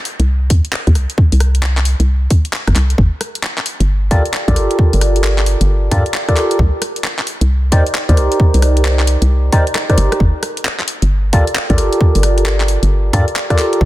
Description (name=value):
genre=UK garage, two-step garage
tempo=133 BPM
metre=4/4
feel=swing 64% on 16ths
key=G minor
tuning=A4 = 440 Hz
part: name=garage drum kit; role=drums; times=0.1-13.8 s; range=handclaps, hi-hat, rim click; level=-21 LUFS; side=left 1 dB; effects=small room reverb, soft clipping on snare
part: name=hollow knocking FM bass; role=bass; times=0.2-13.9 s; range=G1 to G2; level=-13 LUFS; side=equal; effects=none
part: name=electronic kick drum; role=drums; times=0.5-13.9 s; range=none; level=-13 LUFS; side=equal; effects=small room reverb
part: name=barky tine electric piano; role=stabs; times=4.1-13.8 s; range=Eb4 to D5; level=-17 LUFS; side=right 1 dB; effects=phaser, dub echo
room=light reverb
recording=dense, heavily limited modern master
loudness=-12 LUFS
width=side -16 dB against mid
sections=0.0-13.9 A section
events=drum fill 9.8-10.2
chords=0.0 N.C.; 3.0 Gm9; 6.6 Cm9; 10.2 Gm9